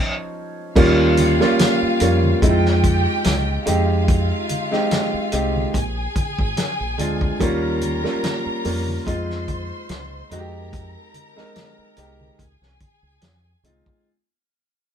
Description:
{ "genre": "lush 1970s-style soul", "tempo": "72 BPM", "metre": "4/4", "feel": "swing 54% on 16ths", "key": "Db lydian", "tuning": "A4 = 440 Hz", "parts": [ { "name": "warm grand piano", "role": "accompaniment", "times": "0.0-14.1 s", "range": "F3 to Db5", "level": "-20 LUFS", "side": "right 1 dB", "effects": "none" }, { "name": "rich studio violin section", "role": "second line", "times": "0.8-14.0 s", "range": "F4 to C6", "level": "-27 LUFS", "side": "equal", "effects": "none" }, { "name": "deep dub fingered electric bass", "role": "bass", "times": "0.8-13.8 s", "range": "Ab1 to F2", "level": "-23 LUFS", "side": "equal", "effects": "none" }, { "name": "warm soul drum kit", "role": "drums", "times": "0.8-14.0 s", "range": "crash cymbal, hi-hat, kick drum, snare drum", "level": "-22 LUFS", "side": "equal", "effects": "none" }, { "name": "congas", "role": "percussion", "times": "0.8-13.8 s", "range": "none", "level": "-31 LUFS", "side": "right 2 dB", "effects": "none" } ], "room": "moderate studio reverb, RT60 0.6 s", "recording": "band playing live in one room", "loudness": "-17 LUFS", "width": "side -8 dB against mid", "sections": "0.8-14.1 A section", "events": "stop 0.0-0.8; fade-out 0.8-14.1", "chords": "0.0 Dbmaj7; 0.8 Eb9; 2.4 Dbmaj7/F; 3.7 Fm7; 5.7 Bb7; 7.4 Eb9; 9.1 Dbmaj7/F; 10.3 Fm7; 12.4 Dbmaj7", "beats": "| 0.76 1.59 2.42 3.25 | 4.08 4.91 5.74 6.57 | 7.40 8.23 9.07 9.90 | 10.73 11.56 12.39 13.22" }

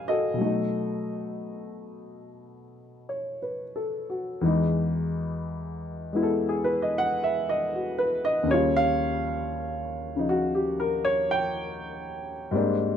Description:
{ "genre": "solo jazz", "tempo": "59 BPM", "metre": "4/4", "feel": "swing 69% on 8ths", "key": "unclear", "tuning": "A4 = 437 Hz", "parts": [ { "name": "dark baby grand piano", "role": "solo", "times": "0.0-13.0 s", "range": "D#2 to Ab5", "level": "-25 LUFS", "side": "left 1 dB", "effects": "none" } ], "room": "light reverb", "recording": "close, detailed microphones", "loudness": "-24 LUFS", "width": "side -8 dB against mid", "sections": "0.0-4.4 A section; 4.4-13.0 B section", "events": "grand piano solo 4.4-13.0", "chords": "0.4 B7; 4.4 Emaj7; 8.5 D#9", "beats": "| 0.39 1.40 2.41 3.42 | 4.43 5.45 6.46 7.47 | 8.48 9.50 10.51 11.52 | 12.54" }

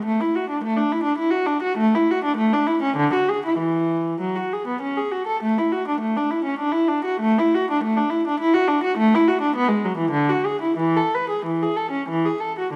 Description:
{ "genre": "classical, baroque-style suite movement for unaccompanied viola", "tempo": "87-108 BPM", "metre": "3/4", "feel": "rubato", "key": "A major", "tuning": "A4 = 440 Hz", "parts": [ { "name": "warm viola", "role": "solo", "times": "0.0-12.8 s", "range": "D3 to B4", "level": "-21 LUFS", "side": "equal", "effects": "none" } ], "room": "moderate recital hall reverb, RT60 1.6 s", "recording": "vinyl crackle", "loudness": "-21 LUFS", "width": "mono", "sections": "0.0-12.7 A section", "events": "none", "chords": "none", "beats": "| 0.04 0.61 1.17 | 1.77 2.35 2.93 | 3.55 4.19 4.80 | 5.42 6.02 6.60 | 7.23 7.83 8.40 | 8.97 9.55 10.14 | 10.78 11.45 12.08 | 12.71" }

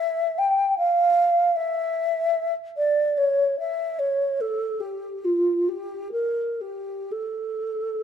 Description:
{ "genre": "classical, free, expressive piece for unaccompanied alto flute", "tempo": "56-78 BPM", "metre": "3/4", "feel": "rubato", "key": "unclear", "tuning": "A4 = 441 Hz", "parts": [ { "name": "mellow hollow alto flute", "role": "solo", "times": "0.0-8.0 s", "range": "F4 to G5", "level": "-22 LUFS", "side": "equal", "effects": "none" } ], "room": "moderate recital hall reverb, RT60 1.4 s", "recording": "close, detailed microphones", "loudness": "-21 LUFS", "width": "side -8 dB against mid", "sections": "0.0-8.0 A section", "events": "none", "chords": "none", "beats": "0.37 1.17 | 1.97 2.77 3.59 | 4.40 5.24 6.13 | 7.12" }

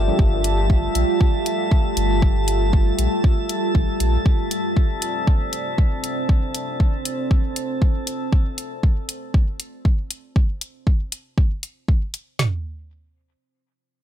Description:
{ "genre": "dub techno", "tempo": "118 BPM", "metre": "4/4", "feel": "swing 54% on 16ths", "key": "unclear", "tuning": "A4 = 440 Hz", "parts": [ { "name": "deep dark ambient pad", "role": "sustained chords", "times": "0.0-8.3 s", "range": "G3 to D5", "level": "-25 LUFS", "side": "right 2 dB", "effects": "chorus, built-in reverb, sidechain pumping" }, { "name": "pure sine sub bass", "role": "bass", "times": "0.0-4.2 s", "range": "G1 to Bb1", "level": "-21 LUFS", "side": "equal", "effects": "sidechain pumping" }, { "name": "drifting glass-harmonics texture", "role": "texture", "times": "0.0-8.3 s", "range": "A3 to A5", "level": "-28 LUFS", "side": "left 3 dB", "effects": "chorus, built-in reverb, sidechain pumping" }, { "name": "deep house drum kit", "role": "drums", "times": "0.2-12.5 s", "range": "kick drum, snare drum, toms", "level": "-18 LUFS", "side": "equal", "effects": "none" }, { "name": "electronic hi-hat", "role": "drums", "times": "0.4-12.2 s", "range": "none", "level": "-27 LUFS", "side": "left 2 dB", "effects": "none" } ], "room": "light reverb", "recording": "none", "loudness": "-18 LUFS", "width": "side -10 dB against mid", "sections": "0.0-12.4 A section; 12.4-14.0 B section", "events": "none", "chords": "0.0 G7(no3); 4.3 Dm7; 12.4 N.C.", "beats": "| 0.19 0.70 1.21 1.72 | 2.22 2.73 3.24 3.75 | 4.26 4.76 5.27 5.78 | 6.29 6.80 7.31 7.82 | 8.32 8.83 9.34 9.85 | 10.36 10.87 11.38 11.88 | 12.39" }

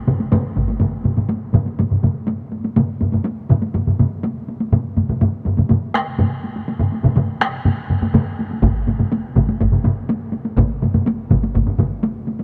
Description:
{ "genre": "japanese traditional, taiko drum ensemble", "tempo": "123 BPM", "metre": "4/4", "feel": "straight", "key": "none", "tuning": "none", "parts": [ { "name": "taiko ensemble", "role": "percussion", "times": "0.1-12.4 s", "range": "none", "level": "-25 LUFS", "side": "equal", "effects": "none" }, { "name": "taiko ensemble", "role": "percussion", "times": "0.1-11.9 s", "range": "none", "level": "-22 LUFS", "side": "equal", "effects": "none" }, { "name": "taiko ensemble", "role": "percussion", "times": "0.1-11.9 s", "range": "none", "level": "-24 LUFS", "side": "equal", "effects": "none" }, { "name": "taiko ensemble", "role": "percussion", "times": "0.6-0.7, 8.6-11.7 s", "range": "none", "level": "-25 LUFS", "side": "equal", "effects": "none" } ], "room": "moderate huge ambient reverb, RT60 8.4 s", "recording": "dark, warm production", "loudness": "-19 LUFS", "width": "mono", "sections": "0.8-12.4 A section", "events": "none", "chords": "none", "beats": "0.32 | 0.81 1.30 1.79 2.28 | 2.77 3.26 3.75 4.24 | 4.73 5.21 5.70 6.19 | 6.68 7.17 7.66 8.14 | 8.63 9.12 9.60 10.09 | 10.58 11.06 11.55 12.04" }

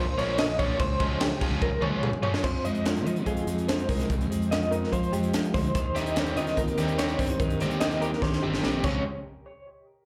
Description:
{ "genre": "math rock and midwest emo", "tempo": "145 BPM", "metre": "4/4", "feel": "straight", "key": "unclear", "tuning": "A4 = 444 Hz", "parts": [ { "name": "electric guitar through a small old amp", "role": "arpeggios", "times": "0.0-9.0 s", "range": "G4 to Eb5", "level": "-33 LUFS", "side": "equal", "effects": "tremolo, analog delay, slapback echo" }, { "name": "overdriven semi-hollow guitar", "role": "riff", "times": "0.0-2.4, 5.9-9.0 s", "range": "Db3 to G4", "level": "-34 LUFS", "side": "equal", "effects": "slapback echo" }, { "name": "fuzz fingered electric bass", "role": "bass", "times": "0.0-9.0 s", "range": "G1 to F3", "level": "-34 LUFS", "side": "equal", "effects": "overdrive" }, { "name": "crisp fusion drum kit", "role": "drums", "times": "0.2-8.9 s", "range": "crash cymbal, hi-hat, kick drum, snare drum, toms", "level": "-32 LUFS", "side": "equal", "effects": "none" }, { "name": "twelve-string electric guitar", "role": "accompaniment", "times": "2.4-9.0 s", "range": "F2 to G4", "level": "-33 LUFS", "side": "equal", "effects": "subtle chorus" } ], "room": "little or no reverb", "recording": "live gig heard through the venue's PA, club reverb", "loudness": "-27 LUFS", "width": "mono", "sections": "0.0-2.4 A section; 2.4-9.0 B section; 9.0-10.1 C section", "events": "drum fill 1.6-2.4, 8.2-9.0", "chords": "0.0 Bbmadd9; 0.8 Db6; 2.4 Fm9; 5.7 Cm7/Eb; 8.8 Dbmaj7; 9.0 N.C.", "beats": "0.39 | 0.80 1.21 1.62 2.04 | 2.45 2.86 3.27 3.68 | 4.10 4.51 4.92 5.33 | 5.75 6.16 6.57 6.99 | 7.40 7.81 8.22 8.63" }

